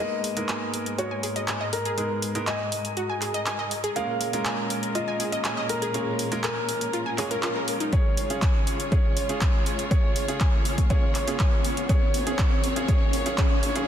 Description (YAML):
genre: progressive house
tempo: 121 BPM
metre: 4/4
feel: straight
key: G# dorian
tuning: A4 = 440 Hz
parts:
  - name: dark grand piano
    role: melody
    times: 0.0-13.9 s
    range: A#4 to E#5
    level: -31 LUFS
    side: left 1 dB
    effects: ping-pong delay
  - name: warm studio string section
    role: sustained chords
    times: 0.0-13.9 s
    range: D#2 to C#5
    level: -34 LUFS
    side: equal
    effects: sidechain pumping, low-pass filter
  - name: wide unison pluck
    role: arpeggios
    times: 0.0-13.4 s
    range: D#4 to G#5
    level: -33 LUFS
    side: equal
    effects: cassette tape, sidechain pumping, ping-pong delay
  - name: bright baby grand piano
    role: stabs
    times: 0.0-13.9 s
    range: G#3 to C#5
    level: -32 LUFS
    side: right 2 dB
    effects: sidechain pumping, low-pass filter, ping-pong delay
  - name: riser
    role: sound effects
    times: 0.0-13.9 s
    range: none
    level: -37 LUFS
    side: equal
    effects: none
  - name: deep house drum kit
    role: drums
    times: 0.2-13.9 s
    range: handclaps, hi-hat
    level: -31 LUFS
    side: right 1 dB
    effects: overdrive
  - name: electronic kick drum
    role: drums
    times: 7.9-13.5 s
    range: none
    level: -22 LUFS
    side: equal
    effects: overdrive
room: light reverb, digital ambience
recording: dense, heavily limited modern master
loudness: -23 LUFS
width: side -10 dB against mid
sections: 0.0-13.9 A section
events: build-up 0.0-13.9; riser 0.0-13.9; filter sweep on string section 0.0-13.9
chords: 0.0 G#madd9; 4.0 A#m7; 7.9 C#; 11.9 D#m7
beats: 0.49 0.98 1.48 | 1.98 2.47 2.97 3.46 | 3.96 4.46 4.95 5.45 | 5.94 6.44 6.93 7.43 | 7.93 8.42 8.92 9.41 | 9.91 10.41 10.90 11.40 | 11.89 12.39 12.88 13.38